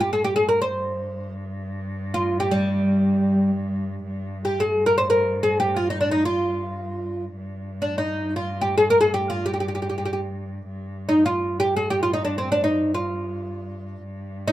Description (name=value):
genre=Persian modal ensemble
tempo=free time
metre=none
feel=none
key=G dastgah shur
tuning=A4 = 438 Hz
part: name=oud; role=melody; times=0.0-14.5 s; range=G3 to C5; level=-20 LUFS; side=equal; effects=none
part: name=clear cello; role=drone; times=0.0-14.5 s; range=G2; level=-31 LUFS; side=equal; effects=none
room=moderate small room reverb, RT60 0.5 s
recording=minimal, uncompressed stereo recording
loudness=-20 LUFS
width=side -14 dB against mid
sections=0.0-4.0 A section; 4.0-14.5 A section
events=none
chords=none